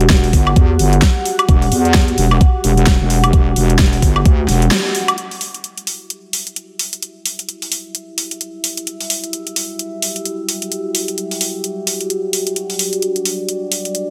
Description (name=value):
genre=bass house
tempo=130 BPM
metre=4/4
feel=swing 59% on 16ths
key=E minor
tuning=A4 = 440 Hz
part: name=dark analog pad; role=sustained chords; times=0.0-14.1 s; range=F#4 to F#5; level=-25 LUFS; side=equal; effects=chorus, phaser, sidechain pumping
part: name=wobble bass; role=bass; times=0.0-4.7 s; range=E1 to E2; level=-16 LUFS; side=equal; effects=chorus, overdrive, sidechain pumping
part: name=big-room dance drum kit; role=drums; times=0.0-14.1 s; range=hi-hat, snare drum, woodblock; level=-21 LUFS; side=equal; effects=overdrive
part: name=electronic kick drum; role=drums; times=0.1-4.4 s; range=none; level=-14 LUFS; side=equal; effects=overdrive
room=light reverb, digital ambience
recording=none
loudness=-16 LUFS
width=mono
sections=0.0-5.2 A section; 5.2-14.1 B section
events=break 4.7-5.2; band accent 4.7; filter sweep on analog synth pad 5.2-14.1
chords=0.0 Emadd9